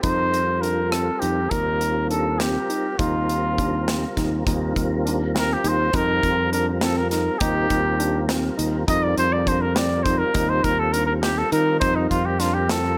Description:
progressive instrumental, band music in an uneven meter; 204 BPM (eighths); 5/8; straight; Eb lydian; A4 = 441 Hz
mellow trumpet; melody; 0.0-13.0 s; Eb4 to Eb5; -25 LUFS; equal
tonewheel organ; accompaniment; 0.0-13.0 s; G3 to Bb4; -31 LUFS; equal; chorus vibrato, slow rotary speaker
overdriven tine electric piano; arpeggios; 0.0-12.9 s; C4 to Eb4; -31 LUFS; equal
modern bright fingered electric bass; bass; 0.0-13.0 s; Eb2 to Eb3; -27 LUFS; equal
big rock drum kit; drums; 0.0-12.8 s; hi-hat, kick drum, rim click, snare drum; -29 LUFS; equal
light reverb, studio reverb; -22 LUFS; mono
0.0-4.5 A section; 4.5-13.0 B section
trumpet solo 4.5-13.0
0.0 Fsus4; 1.5 Eb6; 5.9 Fsus4; 7.4 Eb6; 8.9 Fsus4; 10.3 Eb6; 11.8 Fsus4

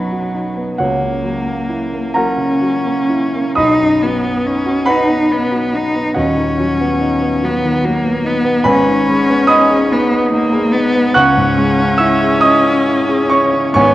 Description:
classical, romantic duo for cello and grand piano; 40-49 BPM (dotted quarters); 6/8; rubato; B major; A4 = 440 Hz
clear cello; melody; 0.0-13.9 s; F#3 to D#4; -16 LUFS; left 1 dB
warm grand piano; accompaniment; 0.0-13.9 s; D#1 to F#6; -14 LUFS; right 1 dB
wet scoring stage reverb, RT60 1.9 s; worn, warbling old tape, cassette tape, warbly pitch drift; -12 LUFS; side -15 dB against mid
0.0-13.9 A section
0.0 B; 0.8 F#7/C#; 3.6 B; 6.2 B/D#; 8.7 G#m; 11.2 C#m

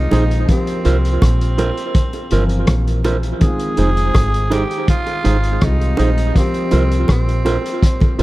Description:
lovers rock reggae; 82 BPM; 4/4; straight; F minor; A4 = 441 Hz
growling tenor saxophone; melody; 0.0-8.2 s; C4 to Ab4; -24 LUFS; right 2 dB; tape echo
warm concert grand piano; accompaniment; 0.0-8.2 s; Eb3 to Bb4; -24 LUFS; left 2 dB; tape echo
deep dub fingered electric bass; bass; 0.0-8.2 s; F1 to C2; -16 LUFS; equal
mellow electric guitar; stabs; 0.1-8.2 s; Eb4 to C5; -23 LUFS; right 3 dB; spring reverb, tape echo
vintage drum kit; drums; 0.1-8.2 s; hi-hat, kick drum, rim click; -17 LUFS; equal
bongos; percussion; 0.1-8.2 s; -28 LUFS; right 2 dB
small room ambience; dark, warm production; -14 LUFS; side -18 dB against mid
0.0-8.2 A section
0.5 C7sus4; 3.4 Fm7; 6.4 C7sus4

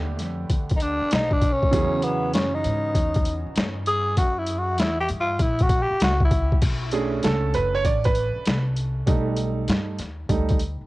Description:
hip hop, jazz-hop; 98 BPM; 4/4; swing 65% on 16ths; A4 = 439 Hz
warm concert grand piano; accompaniment; 0.0-10.6 s; C#3 to D5; -27 LUFS; right 4 dB; cassette tape
upright bass; bass; 0.0-10.8 s; F#1 to G#2; -27 LUFS; left 1 dB
boom bap sampler-style drum kit; drums; 0.2-10.8 s; crash cymbal, hi-hat, kick drum, snare drum; -23 LUFS; left 1 dB; overdrive
growling tenor saxophone; melody; 0.8-6.6 s; B3 to G#4; -25 LUFS; left 1 dB; cassette tape, analog delay
small room ambience; home recording on cassette; -20 LUFS; side -19 dB against mid
0.0-6.6 A section; 6.6-10.9 A section
tenor saxophone solo 0.0-6.6; grand piano solo 6.6-10.9
0.0 Bm7b13; 1.7 Emaj7; 4.2 F#7b9; 6.6 Bm9; 9.1 B7alt

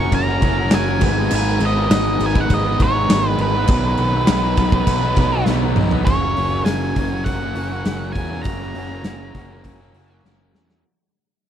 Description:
classic rock; 101 BPM; 4/4; straight; A4 = 440 Hz
octave-fuzz lead guitar; melody; 0.0-10.2 s; B4 to C#6; -23 LUFS; right 2 dB; distortion
raw garage guitar; riff; 0.0-10.8 s; F#2 to B4; -22 LUFS; equal; overdrive, spring reverb
fuzz picked electric bass; bass; 0.0-10.8 s; F#1 to E2; -22 LUFS; equal; overdrive
big rock drum kit; drums; 0.1-10.8 s; crash cymbal, hi-hat, kick drum, snare drum, toms; -20 LUFS; equal
little or no reverb; -16 LUFS; side -10 dB against mid
0.0-6.1 A section; 6.1-10.8 B section
drum fill 5.5-6.1, 10.2-10.8; fade-out 6.1-10.8
0.0 F#; 1.0 G#m; 3.7 B; 6.1 F#

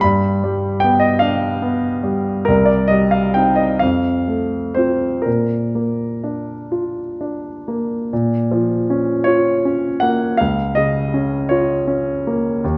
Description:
classical, romantic nocturne for solo piano; 40-55 BPM (dotted quarters); 6/8; rubato; Bb major, Bb minor from 8.1 s; A4 = 440 Hz
warm grand piano; solo; 0.0-12.8 s; C2 to B5; -18 LUFS; equal
wet recital hall reverb, RT60 1.4 s; dark, warm production, nothing above 7.8 kHz; -18 LUFS; mono
0.0-8.1 A section; 8.1-12.8 B section
0.0 G7; 2.5 Cm; 3.8 F; 5.3 Bb; 8.1 Bbm; 10.4 Bbm/Db

